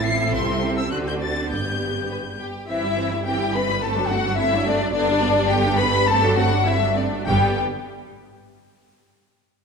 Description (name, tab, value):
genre	quick classical-period movement for string orchestra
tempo	98-108 BPM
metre	2/4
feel	straight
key	G major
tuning	A4 = 445 Hz
part	warm symphonic violin section	melody	0.0-7.6 s	D5 to C7	-23 LUFS	left 4 dB	none
part	rich studio violin section	second line	0.0-7.6 s	D4 to E5	-26 LUFS	left 3 dB	none
part	rich symphonic viola section	accompaniment	0.0-7.6 s	D3 to G4	-26 LUFS	right 2 dB	none
part	rich symphonic cello section	bass	0.0-7.6 s	G2 to D3	-27 LUFS	right 4 dB	none
part	warm symphonic double bass section	bass	0.0-7.6 s	G1 to D2	-28 LUFS	right 4 dB	none
room	moderate concert hall reverb, RT60 2.1 s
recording	none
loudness	-19 LUFS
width	side -5 dB against mid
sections	0.0-2.7 A section; 2.7-7.3 B section; 7.3-8.4 C section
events	none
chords	0.3 Am/C; 0.9 D7; 1.5 G; 2.7 C/G; 3.8 D7/G; 4.9 G; 6.1 D7/G; 7.3 G